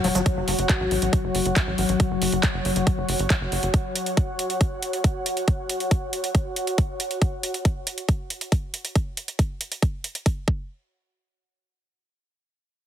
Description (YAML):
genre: psychedelic trance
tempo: 138 BPM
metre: 4/4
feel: straight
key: unclear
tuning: A4 = 440 Hz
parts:
  - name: overtone-sweeping drone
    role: sustained chords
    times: 0.0-3.8 s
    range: F#3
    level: -28 LUFS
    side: left 6 dB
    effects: chorus, built-in reverb, sidechain pumping
  - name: tight sequencer bass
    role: bass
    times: 0.0-3.7 s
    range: E1 to A1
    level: -27 LUFS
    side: equal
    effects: tube saturation
  - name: big-room dance drum kit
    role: drums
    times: 0.0-10.3 s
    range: handclaps, hi-hat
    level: -29 LUFS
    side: right 1 dB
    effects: overdrive
  - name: airy breathy pad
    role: texture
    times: 0.0-7.2 s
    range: F#4 to F#5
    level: -29 LUFS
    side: right 1 dB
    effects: chorus, sidechain pumping
  - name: electronic kick drum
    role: drums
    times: 0.3-10.6 s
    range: none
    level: -22 LUFS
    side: equal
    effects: overdrive
room: moderate lush hall reverb, RT60 2.1 s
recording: heavily compressed radio sound, multiband compression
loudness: -22 LUFS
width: side -10 dB against mid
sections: 0.0-10.7 A section; 10.7-12.9 B section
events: none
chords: 0.0 F#5; 10.5 N.C.